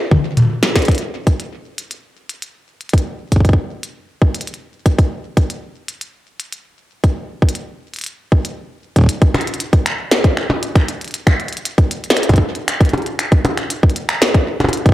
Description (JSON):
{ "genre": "IDM", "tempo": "117 BPM", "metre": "4/4", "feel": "straight", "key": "none", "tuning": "none", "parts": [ { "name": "electronic kick drum", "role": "drums", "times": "0.1-14.9 s", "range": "none", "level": "-13 LUFS", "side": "equal", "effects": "none" }, { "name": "glitchy drum kit", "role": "drums", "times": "0.1-14.9 s", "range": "finger snaps, hi-hat, percussion blips, snare drum, toms", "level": "-17 LUFS", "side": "equal", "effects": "none" } ], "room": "light reverb", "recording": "dry, gritty hardware recording", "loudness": "-14 LUFS", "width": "side -15 dB against mid", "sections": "0.9-9.1 A section; 9.1-14.9 B section", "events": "drum fill 0.0-0.9", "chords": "none", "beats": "0.37 | 0.88 1.40 1.91 2.42 | 2.94 3.45 3.96 4.47 | 4.99 5.50 6.01 6.53 | 7.04 7.55 8.06 8.58 | 9.09 9.60 10.11 10.63 | 11.14 11.65 12.17 12.68 | 13.19 13.70 14.22 14.73" }